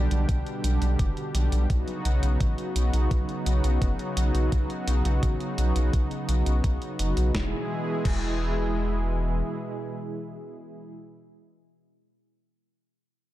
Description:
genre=synthwave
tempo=85 BPM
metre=4/4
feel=straight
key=E major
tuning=A4 = 439 Hz
part: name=warm analog pad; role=sustained chords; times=0.0-10.9 s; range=B2 to G#4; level=-30 LUFS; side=equal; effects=chorus, tremolo, sidechain pumping
part: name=round analog bass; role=bass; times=0.0-9.4 s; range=E1 to B1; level=-24 LUFS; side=equal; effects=sidechain pumping
part: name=clean 12-bit digital drum machine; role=drums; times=0.1-8.3 s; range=crash cymbal, hi-hat, snare drum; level=-37 LUFS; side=right 1 dB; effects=none
part: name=electronic kick drum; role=drums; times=0.3-8.3 s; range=none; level=-27 LUFS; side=equal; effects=none
room=little or no reverb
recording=dark, warm production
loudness=-24 LUFS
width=side -14 dB against mid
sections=0.0-7.3 A section; 7.3-10.2 B section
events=none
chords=0.0 G; 1.7 Badd9; 7.3 E

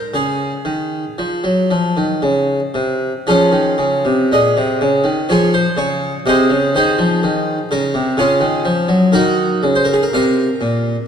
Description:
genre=classical, baroque-style suite movement for harpsichord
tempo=56-64 BPM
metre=3/4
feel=rubato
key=Db major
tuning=A4 = 440 Hz
part: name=harpsichord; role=solo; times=0.0-11.1 s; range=Bb2 to F5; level=-14 LUFS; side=equal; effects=none
room=moderate concert hall reverb, RT60 2.2 s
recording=dark, warm production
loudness=-13 LUFS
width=side -8 dB against mid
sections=0.0-3.2 A section; 3.2-11.1 B section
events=none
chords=0.1 Db; 6.3 Ab/C; 8.2 Db; 9.1 Ebm

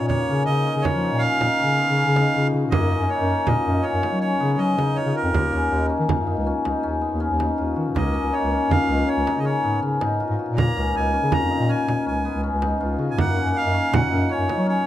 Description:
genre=contemporary instrumental, chamber music in an uneven meter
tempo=160 BPM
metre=7/4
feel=straight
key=Db mixolydian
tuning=A4 = 444 Hz
part: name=accordion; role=melody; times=0.0-14.9 s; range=Bb4 to Bb5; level=-26 LUFS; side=right 4 dB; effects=none
part: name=cimbalom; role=arpeggios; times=0.0-14.9 s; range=Bb3 to Gb4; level=-23 LUFS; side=left 2 dB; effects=none
part: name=mellow bass clarinet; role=bass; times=0.0-14.8 s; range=Db2 to Gb3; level=-24 LUFS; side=equal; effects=none
part: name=frame drum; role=percussion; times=0.1-14.7 s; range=none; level=-26 LUFS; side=right 4 dB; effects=none
room=light reverb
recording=close, detailed microphones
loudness=-19 LUFS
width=side -12 dB against mid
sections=0.0-14.9 A section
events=none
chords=0.0 Db6; 2.7 Gb; 5.3 Ebm; 8.0 Db6; 13.2 Gb

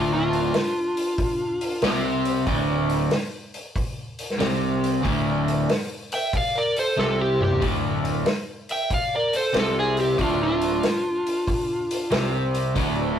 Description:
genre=blues rock power trio and southern rock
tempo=93 BPM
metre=4/4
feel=swing 67% on 8ths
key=D minor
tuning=A4 = 440 Hz
part: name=overdriven slide guitar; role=melody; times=0.0-2.0, 6.1-12.3 s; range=F4 to G5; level=-24 LUFS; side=equal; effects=none
part: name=lead guitar through a small cranked amp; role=second line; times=0.0-2.0, 6.1-12.3 s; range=D4 to E5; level=-31 LUFS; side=right 1 dB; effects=overdrive
part: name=crunchy overdriven guitar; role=riff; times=0.0-13.2 s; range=D2 to C4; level=-23 LUFS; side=equal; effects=none
part: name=fuzz picked electric bass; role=bass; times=0.0-13.2 s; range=D1 to C2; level=-29 LUFS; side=equal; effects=overdrive
part: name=vintage drum kit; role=drums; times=0.3-13.0 s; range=hi-hat, kick drum, snare drum, toms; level=-27 LUFS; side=equal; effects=none
room=moderate booth ambience, RT60 0.2 s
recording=rough rehearsal-room recording, warm saturation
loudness=-21 LUFS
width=side -9 dB against mid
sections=0.0-13.2 A section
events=drum fill 7.0-7.6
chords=0.0 Dm

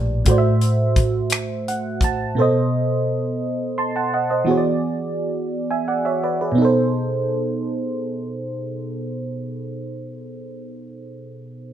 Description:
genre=slow six-eight R&B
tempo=57 BPM (dotted quarters)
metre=6/8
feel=straight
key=unclear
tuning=A4 = 440 Hz
part: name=mellow FM electric piano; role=accompaniment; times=0.0-11.7 s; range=A2 to C6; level=-20 LUFS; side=right 1 dB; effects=chorus
part: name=damped 70s drum kit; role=drums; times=0.3-2.2 s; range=finger snaps, hi-hat, kick drum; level=-21 LUFS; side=left 1 dB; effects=none
room=moderate large studio reverb, RT60 0.9 s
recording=band playing live in one room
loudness=-19 LUFS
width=side -10 dB against mid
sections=0.0-6.6 A section; 6.6-10.8 B section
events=FM electric piano fill 1.3-2.4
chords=0.3 Am6; 2.4 B7b9; 4.5 E9; 6.6 B7b9

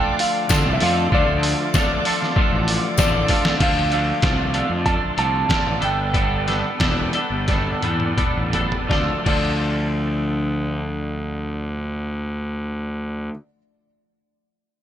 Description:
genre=indie rock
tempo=82-97 BPM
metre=4/4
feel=straight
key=D dorian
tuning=A4 = 442 Hz
part: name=clear upright piano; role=melody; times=0.0-13.3 s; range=D5 to A5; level=-26 LUFS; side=right 1 dB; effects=digital delay
part: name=bright tonewheel organ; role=sustained chords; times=0.0-3.6 s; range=A4 to D6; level=-33 LUFS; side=equal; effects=slow rotary speaker
part: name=twangy electric guitar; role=riff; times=0.0-13.3 s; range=D3 to A4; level=-26 LUFS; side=right 8 dB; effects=ensemble chorus, digital delay
part: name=twelve-string electric guitar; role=riff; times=0.0-13.3 s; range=F3 to A4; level=-26 LUFS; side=left 8 dB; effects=none
part: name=trip hop sampler-style drum kit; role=drums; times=0.2-9.5 s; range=crash cymbal, hi-hat, kick drum, snare drum, toms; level=-22 LUFS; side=equal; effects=gated reverb
part: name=fuzz fingered electric bass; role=bass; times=0.5-13.3 s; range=E1 to D3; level=-24 LUFS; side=equal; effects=overdrive
part: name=tambourine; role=percussion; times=0.5-3.1 s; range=none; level=-29 LUFS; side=left 19 dB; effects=none
room=light reverb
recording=bright 1980s-style digital production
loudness=-18 LUFS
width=side -10 dB against mid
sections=0.0-3.6 A section; 3.6-8.9 B section; 8.9-11.8 C section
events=drum fill 3.3-3.6, 7.5-8.9; slowing down 3.6-8.9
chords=0.0 Dm; 5.8 Gadd9; 8.9 Dm

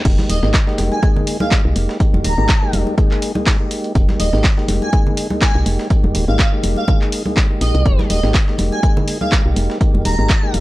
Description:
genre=deep house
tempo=123 BPM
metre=4/4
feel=swing 55% on 16ths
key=F minor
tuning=A4 = 435 Hz
part: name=tonewheel organ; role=stabs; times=0.0-10.6 s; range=Ab3 to Ab4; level=-22 LUFS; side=equal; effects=overdrive, slow rotary speaker, sidechain pumping, tape echo
part: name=woody FM bass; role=bass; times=0.1-10.6 s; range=Eb1 to C2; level=-17 LUFS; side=equal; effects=tube saturation, sidechain pumping
part: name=breakbeat sampler-style drum kit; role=drums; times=0.1-10.6 s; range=hi-hat, snare drum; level=-32 LUFS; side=right 1 dB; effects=high-pass filter on hats, high-pass filter on snare
part: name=deep house drum kit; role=drums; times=0.1-10.6 s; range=crash cymbal, handclaps, hi-hat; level=-23 LUFS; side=equal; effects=none
part: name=electronic kick drum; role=drums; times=0.1-10.4 s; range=none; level=-15 LUFS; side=equal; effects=none
part: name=congas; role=percussion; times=0.2-10.6 s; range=none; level=-25 LUFS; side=right 1 dB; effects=none
part: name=airy dreamy lead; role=melody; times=0.3-10.5 s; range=Eb5 to Bb5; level=-25 LUFS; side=right 1 dB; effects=chorus, tape echo
room=little or no reverb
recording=dry, gritty hardware recording, cassette tape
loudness=-14 LUFS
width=side -18 dB against mid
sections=0.1-10.6 A section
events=drop 0.1-10.6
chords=0.1 Fm11

